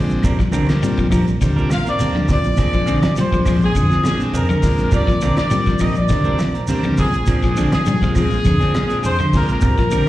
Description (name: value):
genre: afrobeat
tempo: 102 BPM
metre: 4/4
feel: straight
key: Bb mixolydian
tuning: A4 = 440 Hz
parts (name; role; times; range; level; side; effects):
- overdriven combo organ; accompaniment; 0.0-9.6 s; G3 to F4; -26 LUFS; equal; slapback echo
- electric guitar at the edge of break-up; arpeggios; 0.0-10.1 s; D3 to G3; -21 LUFS; left 3 dB; none
- fingered electric bass; bass; 0.0-9.9 s; Eb2 to Bb2; -20 LUFS; equal; none
- damped 70s drum kit; drums; 0.1-10.1 s; hi-hat, kick drum, snare drum; -20 LUFS; equal; none
- congas; percussion; 0.1-9.5 s; none; -23 LUFS; right 1 dB; slapback echo
- shekere; percussion; 0.1-10.1 s; none; -28 LUFS; right 1 dB; none
- clean electric guitar; stabs; 0.2-10.1 s; F3 to Bb4; -26 LUFS; right 4 dB; wide subtle chorus, slapback echo
- claves; percussion; 0.2-10.1 s; none; -40 LUFS; left 1 dB; none
- warm horn section; melody; 1.7-10.1 s; Ab4 to F5; -22 LUFS; equal; slapback echo
room: light reverb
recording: live gig heard through the venue's PA, recital hall reverb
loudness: -14 LUFS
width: side -15 dB against mid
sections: 0.0-10.1 A section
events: none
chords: 0.2 Ebmaj13 (rootless); 2.6 Bb9; 4.9 Ebmaj13; 7.3 Bb9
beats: | 0.24 0.83 1.41 2.00 | 2.59 3.17 3.76 4.34 | 4.93 5.52 6.10 6.69 | 7.28 7.86 8.45 9.03 | 9.62